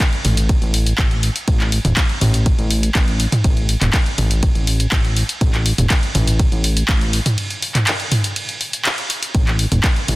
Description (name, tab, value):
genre	melodic techno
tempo	122 BPM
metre	4/4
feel	straight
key	unclear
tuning	A4 = 440 Hz
part	electronic kick drum	drums	0.0-9.9 s	none	-17 LUFS	equal	none
part	punchy analog drum machine	drums	0.0-10.2 s	handclaps, hi-hat, ride cymbal, toms	-19 LUFS	equal	none
part	fat analog bass	bass	0.2-10.2 s	E1 to A1	-18 LUFS	equal	sidechain pumping
room	little or no reverb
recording	dense, heavily limited modern master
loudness	-15 LUFS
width	side -20 dB against mid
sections	0.0-10.2 A section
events	break 7.4-9.3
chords	none